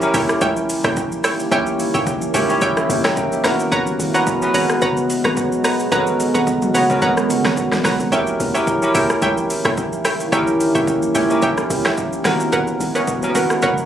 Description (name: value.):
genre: amapiano.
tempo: 109 BPM.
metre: 4/4.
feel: swing 55% on 16ths.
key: G# minor.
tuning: A4 = 440 Hz.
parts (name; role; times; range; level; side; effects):
bell-like tine electric piano; accompaniment; 0.0-13.9 s; A#3 to A#5; -20 LUFS; equal; lush chorus.
deep dark ambient pad; sustained chords; 0.2-13.9 s; D#3 to G4; -23 LUFS; right 1 dB; chorus, built-in reverb.
hollow log drum bass; bass; 0.0-13.9 s; F#1 to D#2; -26 LUFS; equal; none.
deep house drum kit; drums; 0.0-13.9 s; hi-hat, kick drum, rim click, shaker, snare drum, toms; -24 LUFS; equal; overdrive.
analog pluck; stabs; 0.1-13.7 s; A#4 to A#5; -22 LUFS; right 2 dB; chorus, tape echo.
room: light reverb.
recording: recorded on a phone in the room, club reverb.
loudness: -15 LUFS.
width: side -10 dB against mid.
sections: 0.0-13.9 A section.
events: none.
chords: 0.0 D#7b9; 3.4 G#m11; 8.1 D#7b9; 12.3 G#m11.